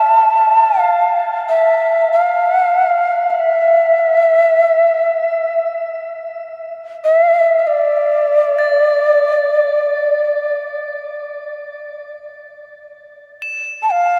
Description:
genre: world meditative, free-time meditation music.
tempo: free time.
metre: none.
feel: none.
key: unclear.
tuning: A4 = 440 Hz.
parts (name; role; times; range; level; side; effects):
breathy mellow Native American-style cedar flute; melody; 0.0-14.2 s; D5 to A5; -15 LUFS; equal; shimmer reverb, tape echo.
crotales; texture; 0.0-14.2 s; F6 to E7; -30 LUFS; equal; shimmer reverb.
room: wet huge ambient reverb, RT60 7.8 s.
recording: dreamy mix soaked in reverb.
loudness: -14 LUFS.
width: mono.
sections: 0.0-12.7 A section; 12.7-14.2 A section.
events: none.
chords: none.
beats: free time.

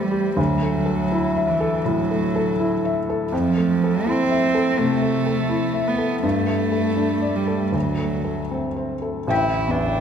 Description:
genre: neoclassical piano and strings.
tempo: 81 BPM.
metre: 4/4.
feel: uneven beats, rubato.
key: unclear.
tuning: A4 = 440 Hz.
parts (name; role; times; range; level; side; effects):
warm cello; second line; 0.0-10.0 s; E3 to E4; -23 LUFS; right 3 dB; none.
felt-muted upright piano; accompaniment; 0.0-10.0 s; A1 to G5; -21 LUFS; left 2 dB; none.
rich double bass; bass; 9.3-10.0 s; A1; -29 LUFS; equal; none.
room: wet cathedral reverb, RT60 4.6 s.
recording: recorded in a church or concert hall.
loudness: -19 LUFS.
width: side -8 dB against mid.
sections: 0.0-9.3 A section.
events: none.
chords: 0.4 Dadd9; 3.3 Fmaj7; 6.2 Gsus2; 7.7 D7; 9.3 A7(no3).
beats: | 0.38 1.12 1.86 2.59 | 3.32 4.07 4.79 5.51 | 6.24 6.98 7.74 8.52 | 9.30.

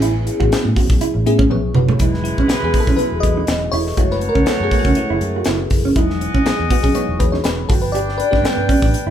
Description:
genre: polished 1980s jazz-funk pop.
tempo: 121 BPM.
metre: 4/4.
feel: swing 54% on 16ths.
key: E major.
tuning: A4 = 439 Hz.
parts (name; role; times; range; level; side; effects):
bell-like FM electric piano; accompaniment; 0.0-9.1 s; F#3 to D#5; -21 LUFS; left 3 dB; chorus, phaser.
mellow electric guitar; riff; 0.0-9.1 s; A3 to G4; -21 LUFS; right 4 dB; none.
vintage muted fingered electric bass; bass; 0.0-9.1 s; E1 to A2; -22 LUFS; equal; none.
crisp fusion drum kit; drums; 0.0-9.1 s; hi-hat, kick drum, snare drum, toms; -18 LUFS; equal; none.
warm horn section; second line; 2.0-9.1 s; G#3 to G5; -24 LUFS; equal; none.
room: light reverb.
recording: band playing live in one room.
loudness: -14 LUFS.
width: side -10 dB against mid.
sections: 0.0-2.0 A section; 2.0-9.1 B section.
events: drum fill 1.5-2.0; FM electric piano solo 2.0-9.1.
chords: 0.0 F#m11; 2.0 Emaj7; 4.0 F#m7; 6.0 Emaj7; 7.7 Gadd9.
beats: | 0.02 0.51 1.01 1.50 | 2.00 2.49 2.99 3.48 | 3.98 4.48 4.97 5.47 | 5.96 6.46 6.95 7.45 | 7.95 8.44 8.94.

